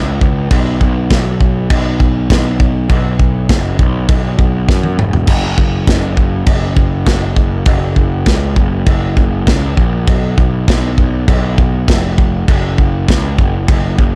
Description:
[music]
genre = heavy metal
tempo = 100 BPM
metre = 4/4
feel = straight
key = F# major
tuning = A4 = 440 Hz
[part]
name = fuzz picked electric bass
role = bass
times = 0.0-14.2 s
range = E1 to F#2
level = -17 LUFS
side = equal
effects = overdrive
[part]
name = modern studio drum kit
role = drums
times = 0.2-14.1 s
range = china cymbal, crash cymbal, kick drum, snare drum, toms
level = -15 LUFS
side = equal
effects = none
[sound]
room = little or no reverb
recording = dark, warm production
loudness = -13 LUFS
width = mono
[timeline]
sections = 0.0-14.2 A section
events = drum fill 4.7-5.3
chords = none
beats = | 0.51 1.10 1.70 2.29 | 2.89 3.49 4.08 4.68 | 5.28 5.88 6.48 7.08 | 7.67 8.27 8.87 9.47 | 10.07 10.67 11.27 11.87 | 12.47 13.07 13.68

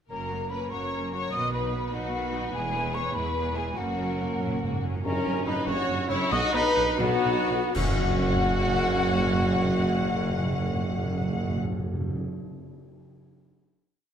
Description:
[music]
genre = cinematic, heroic adventure film score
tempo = 78-100 BPM (dotted quarters)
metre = 6/8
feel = straight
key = F# mixolydian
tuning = A4 = 436 Hz
[part]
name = warm symphonic violin section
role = melody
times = 0.1-11.6 s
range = B3 to F#5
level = -35 LUFS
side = left 4 dB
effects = none
[part]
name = hollow concert flute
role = second line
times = 0.1-11.6 s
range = F#5 to D#6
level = -33 LUFS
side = left 1 dB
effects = none
[part]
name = rich symphonic violin section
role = second line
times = 0.1-11.6 s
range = A#3 to F#5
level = -38 LUFS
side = left 4 dB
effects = none
[part]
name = clear symphonic viola section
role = accompaniment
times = 0.1-11.6 s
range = D#3 to D#5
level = -35 LUFS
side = right 1 dB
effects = none
[part]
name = bright trombone section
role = sustained chords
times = 0.1-11.6 s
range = C#3 to D#4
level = -36 LUFS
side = right 3 dB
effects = none
[part]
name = warm trumpet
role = stabs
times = 0.1-11.6 s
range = B3 to B4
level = -34 LUFS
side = right 1 dB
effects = none
[part]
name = rich symphonic cello section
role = bass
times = 0.1-11.6 s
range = E2 to B2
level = -33 LUFS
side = right 2 dB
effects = none
[part]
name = rich symphonic double bass section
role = bass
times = 0.1-11.6 s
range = E1 to B1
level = -34 LUFS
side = right 4 dB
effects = none
[part]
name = timpani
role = percussion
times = 3.8-5.0, 7.8-12.2 s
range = F#2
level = -31 LUFS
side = right 1 dB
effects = none
[part]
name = warm French horn section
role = sustained chords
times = 5.0-11.6 s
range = F#4 to D#5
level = -30 LUFS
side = left 5 dB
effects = none
[part]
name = clear tuba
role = bass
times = 5.1-11.6 s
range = F#1 to B1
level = -35 LUFS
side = right 3 dB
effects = none
[part]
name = tam-tam, clash cymbals and concert bass drum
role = percussion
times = 5.1-8.7 s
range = none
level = -35 LUFS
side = left 1 dB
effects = none
[sound]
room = wet scoring stage reverb, RT60 1.6 s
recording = none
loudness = -24 LUFS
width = side -8 dB against mid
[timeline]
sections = 0.1-5.0 theme; 5.0-7.8 outro; 7.8-10.8 final chord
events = timpani fill 3.8-5.0; slowing down 4.4-7.8; band accent 5.0-5.5, 7.8-8.3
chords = 0.1 F#; 1.3 B; 2.5 E; 3.8 F#; 6.3 B; 7.8 F#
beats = | 0.11 0.72 | 1.33 1.93 | 2.54 3.15 | 3.77 4.41 | 5.05 5.67 | 6.32 7.00 | 7.76 8.52 | 9.29 10.05

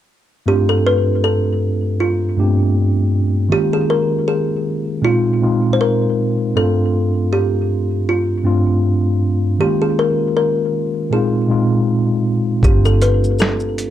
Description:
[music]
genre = lo-fi hip hop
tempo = 79 BPM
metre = 4/4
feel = swing 56% on 16ths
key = unclear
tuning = A4 = 440 Hz
[part]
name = kalimba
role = melody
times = 0.5-13.9 s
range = F4 to C5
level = -19 LUFS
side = equal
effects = low-pass filter, analog delay
[part]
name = tine electric piano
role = accompaniment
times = 0.5-13.9 s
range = G2 to G4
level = -16 LUFS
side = equal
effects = medium stereo tremolo, low-pass filter
[part]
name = vintage muted fingered electric bass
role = bass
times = 12.6-13.9 s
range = G1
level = -15 LUFS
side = equal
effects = none
[part]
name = boom bap sampler-style drum kit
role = drums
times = 12.6-13.9 s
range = finger snaps, hi-hat, kick drum, shaker, snare drum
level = -16 LUFS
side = equal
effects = none
[sound]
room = light reverb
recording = dark, warm production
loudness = -14 LUFS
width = side -11 dB against mid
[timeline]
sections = 0.5-13.9 A section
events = none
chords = 0.5 G9sus4; 3.5 Eb9sus4; 5.0 Bb9sus4; 6.6 G9sus4; 9.6 Eb9sus4; 11.1 Bb9sus4; 12.6 G9sus4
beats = | 0.48 1.24 2.00 2.76 | 3.52 4.28 5.04 5.79 | 6.55 7.31 8.07 8.83 | 9.59 10.35 11.11 11.87 | 12.63 13.39

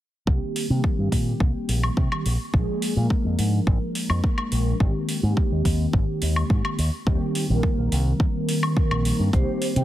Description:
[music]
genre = nu-disco, nu disco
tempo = 106 BPM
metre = 4/4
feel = straight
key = C minor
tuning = A4 = 441 Hz
[part]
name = mellow synth brass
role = accompaniment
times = 0.3-9.8 s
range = Eb3 to Bb4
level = -26 LUFS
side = equal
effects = chorus
[part]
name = fingered electric bass with an envelope filter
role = bass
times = 0.3-9.8 s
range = Ab1 to C3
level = -23 LUFS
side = equal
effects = sidechain pumping
[part]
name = electronic kick drum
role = drums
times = 0.3-9.4 s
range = none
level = -22 LUFS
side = equal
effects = overdrive
[part]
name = electronic hi-hat and woodblock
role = drums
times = 0.6-9.8 s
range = none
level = -30 LUFS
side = equal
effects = overdrive
[part]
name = vibraphone with medium mallets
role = melody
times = 9.3-9.8 s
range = C5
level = -30 LUFS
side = right 6 dB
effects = none
[sound]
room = light reverb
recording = heavily compressed radio sound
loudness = -20 LUFS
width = side -14 dB against mid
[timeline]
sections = 0.3-9.8 A section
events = none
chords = 0.3 Cm7; 2.3 Bb7; 4.8 Abmaj9; 6.8 Eb6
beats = | 0.28 0.84 1.41 1.98 | 2.54 3.11 3.67 4.24 | 4.81 5.37 5.94 6.51 | 7.07 7.64 8.20 8.77 | 9.34

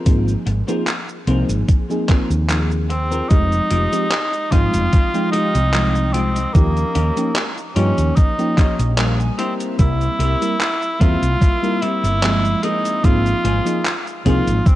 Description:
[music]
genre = vaporwave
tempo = 74 BPM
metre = 4/4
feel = swing 54% on 16ths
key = F minor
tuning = A4 = 439 Hz
[part]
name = mellow FM electric piano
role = accompaniment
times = 0.0-14.8 s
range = F3 to G5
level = -22 LUFS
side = equal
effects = analog chorus
[part]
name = twelve-string electric guitar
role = riff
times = 0.0-14.5 s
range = Ab3 to Bb5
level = -28 LUFS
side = left 3 dB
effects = lush chorus, analog delay
[part]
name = woody fretless electric bass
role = bass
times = 0.1-14.6 s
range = F1 to G2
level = -19 LUFS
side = equal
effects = none
[part]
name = electronic kick drum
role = drums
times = 0.1-14.8 s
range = none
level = -14 LUFS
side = equal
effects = overdrive, vintage 12-bit sampler grit
[part]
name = gated 80s digital drum machine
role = drums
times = 0.1-14.8 s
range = cabasa, handclaps, hi-hat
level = -25 LUFS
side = equal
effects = gated reverb, overdrive, vintage 12-bit sampler grit
[part]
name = clear tenor saxophone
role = melody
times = 2.9-14.8 s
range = Bb3 to F4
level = -21 LUFS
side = equal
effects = tape echo
[sound]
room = light reverb, digital ambience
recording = cassette tape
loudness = -15 LUFS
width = side -15 dB against mid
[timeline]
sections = 0.0-3.3 A section; 3.3-14.8 B section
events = break 2.5-3.3; clean electric guitar fill 8.2-9.8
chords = 0.0 Ab69; 3.3 Fm9; 6.5 Eb9; 9.4 C7; 12.6 Ab69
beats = | 0.06 0.87 1.69 2.50 | 3.31 4.12 4.93 5.74 | 6.55 7.36 8.17 8.98 | 9.79 10.60 11.41 12.22 | 13.04 13.85 14.66

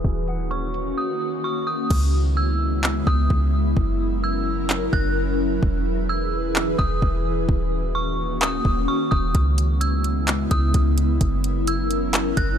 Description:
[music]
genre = hip hop, atmospheric cloud-rap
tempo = 129 BPM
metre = 4/4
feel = half-time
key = C# dorian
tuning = A4 = 440 Hz
[part]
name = ethereal airy pad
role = sustained chords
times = 0.0-12.6 s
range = C#3 to B4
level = -25 LUFS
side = left 1 dB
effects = ensemble chorus, built-in reverb, sidechain pumping
[part]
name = concert harp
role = arpeggios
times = 0.0-3.9 s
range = F#4 to G#5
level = -42 LUFS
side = left 3 dB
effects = tape echo
[part]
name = soft 808-style bass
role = bass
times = 0.0-12.6 s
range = D#1 to C#2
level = -23 LUFS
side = equal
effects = none
[part]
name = smooth R&B drum kit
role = drums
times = 0.0-12.5 s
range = crash cymbal, handclaps, hi-hat, kick drum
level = -22 LUFS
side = equal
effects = none
[part]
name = dark detuned synth bell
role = melody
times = 0.5-12.6 s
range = C#6 to F#6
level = -29 LUFS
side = right 2 dB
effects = chorus, tape echo
[sound]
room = little or no reverb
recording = low-pass filter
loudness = -19 LUFS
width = side -8 dB against mid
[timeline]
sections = 0.0-1.9 A section; 1.9-12.6 B section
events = filter sweep 0.0-1.9; hi-hats muted 1.9-9.3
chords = 0.0 D#m7; 1.9 C#m7; 3.8 F#7; 5.6 E; 7.5 D#m7; 9.3 C#m7; 11.2 F#7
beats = | 0.04 0.51 0.98 1.44 | 1.91 2.37 2.84 3.30 | 3.77 4.23 4.70 5.16 | 5.63 6.09 6.56 7.02 | 7.49 7.95 8.42 8.88 | 9.35 9.81 10.28 10.74 | 11.21 11.67 12.14

